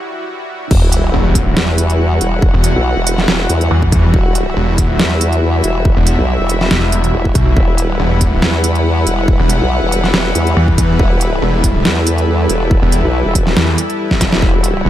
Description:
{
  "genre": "heavy wobble dubstep",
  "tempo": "140 BPM",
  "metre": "4/4",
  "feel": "swing 54% on 16ths, half-time",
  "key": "E minor",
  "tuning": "A4 = 439 Hz",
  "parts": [
    { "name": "supersaw pad", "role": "sustained chords", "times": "0.0-14.9 s", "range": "G3 to B4", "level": "-21 LUFS", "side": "equal", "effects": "sidechain pumping" },
    { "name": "formant-sweep wobble bass", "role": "bass", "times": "0.7-14.8 s", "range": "E1 to E2", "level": "-15 LUFS", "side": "equal", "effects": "chorus, overdrive" },
    { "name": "dubstep drum kit", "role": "drums", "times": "0.7-14.7 s", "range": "crash cymbal, hi-hat, snare drum", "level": "-16 LUFS", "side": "right 1 dB", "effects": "none" },
    { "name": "electronic kick drum", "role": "drums", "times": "0.7-14.5 s", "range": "none", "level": "-14 LUFS", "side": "equal", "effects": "none" },
    { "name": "sub drop", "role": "sound effects", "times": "0.8-2.4 s", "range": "none", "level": "-20 LUFS", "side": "equal", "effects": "none" },
    { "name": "dark studio string section", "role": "texture", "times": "0.7-14.9 s", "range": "G3 to F#5", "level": "-21 LUFS", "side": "left 3 dB", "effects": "sidechain pumping" },
    { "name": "snarling distorted saw bass", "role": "bass", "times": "1.1-14.9 s", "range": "E1 to E2", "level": "-14 LUFS", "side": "equal", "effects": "distortion, overdrive" }
  ],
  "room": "little or no reverb",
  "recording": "high-pass filter",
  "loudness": "-11 LUFS",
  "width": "side -12 dB against mid",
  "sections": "0.7-14.9 A section",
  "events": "break 0.0-0.7; drop 0.7-14.9; impact 0.7-2.4; drum fill 14.1-14.4",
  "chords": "0.0 Emadd9",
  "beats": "0.28 | 0.71 1.14 1.57 2.00 | 2.42 2.85 3.28 3.71 | 4.14 4.57 5.00 5.42 | 5.85 6.28 6.71 7.14 | 7.57 8.00 8.42 8.85 | 9.28 9.71 10.14 10.57 | 10.99 11.42 11.85 12.28 | 12.71 13.14 13.57 13.99 | 14.42 14.85"
}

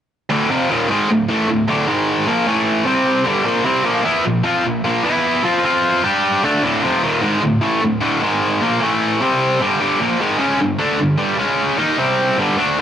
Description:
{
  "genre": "metal",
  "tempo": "151 BPM",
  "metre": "4/4",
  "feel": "straight",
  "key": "D minor",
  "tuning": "A4 = 439 Hz",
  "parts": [
    { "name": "tight distorted guitar", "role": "solo", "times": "0.3-12.8 s", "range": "D2 to G4", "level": "-14 LUFS", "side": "equal", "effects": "distortion, cassette tape, tape echo" }
  ],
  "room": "moderate small room reverb, RT60 0.5 s",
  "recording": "home recording on cassette, nothing above 10.8 kHz",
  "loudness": "-15 LUFS",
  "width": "side -9 dB against mid",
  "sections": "0.3-12.8 A section",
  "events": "none",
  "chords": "0.3 Dm; 1.9 G#5; 2.3 Bb5; 2.5 A5; 2.9 C5; 3.3 G5; 3.5 Bb5; 5.0 E5; 5.4 F5; 6.0 G5; 6.4 D5; 6.6 Dm; 8.2 G#5; 8.6 Bb5; 8.8 A5; 9.2 C5; 9.6 G5; 11.4 C#5; 11.8 Eb5; 12.0 C5",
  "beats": "| 0.30 0.69 1.09 1.48 | 1.88 2.27 2.67 3.06 | 3.46 3.86 4.25 4.65 | 5.05 5.44 5.84 6.23 | 6.63 7.03 7.42 7.82 | 8.22 8.61 9.01 9.41 | 9.80 10.20 10.60 10.99 | 11.39 11.78 12.18 12.58"
}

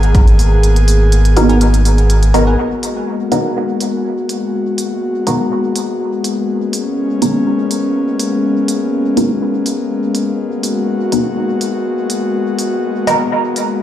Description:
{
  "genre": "dub techno",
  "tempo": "123 BPM",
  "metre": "4/4",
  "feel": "straight",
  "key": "G# minor",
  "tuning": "A4 = 438 Hz",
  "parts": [
    { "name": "airy breathy pad", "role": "sustained chords", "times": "0.0-13.8 s", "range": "G#3 to G#4", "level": "-16 LUFS", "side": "left 2 dB", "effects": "chorus, sidechain pumping" },
    { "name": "warm sub bass", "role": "bass", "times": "0.0-2.6 s", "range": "G#1", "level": "-11 LUFS", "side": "equal", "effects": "sidechain pumping" },
    { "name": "electronic hi-hat", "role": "drums", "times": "0.0-13.7 s", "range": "none", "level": "-24 LUFS", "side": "right 2 dB", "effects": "none" },
    { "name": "filtered dub chord stab", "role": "stabs", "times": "1.4-13.3 s", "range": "B3 to A#4", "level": "-17 LUFS", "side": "right 1 dB", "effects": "phaser, sidechain pumping, dub echo" },
    { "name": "wavetable chord stab", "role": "riff", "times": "1.5-2.6 s", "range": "A#4 to G#5", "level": "-28 LUFS", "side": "right 1 dB", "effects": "sidechain pumping, dub echo" }
  ],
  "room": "light reverb",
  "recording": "played on a big sound system in a bare room, large studio reverb",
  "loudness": "-13 LUFS",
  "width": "side -11 dB against mid",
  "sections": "0.0-2.6 A section; 2.6-13.8 B section",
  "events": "filter sweep on analog synth pad 2.6-13.8",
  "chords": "0.0 G#m9",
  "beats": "0.15 | 0.63 1.12 1.61 2.10 | 2.59 3.07 3.56 4.05 | 4.54 5.03 5.51 6.00 | 6.49 6.98 7.46 7.95 | 8.44 8.93 9.41 9.90 | 10.39 10.88 11.37 11.85 | 12.34 12.83 13.32 13.80"
}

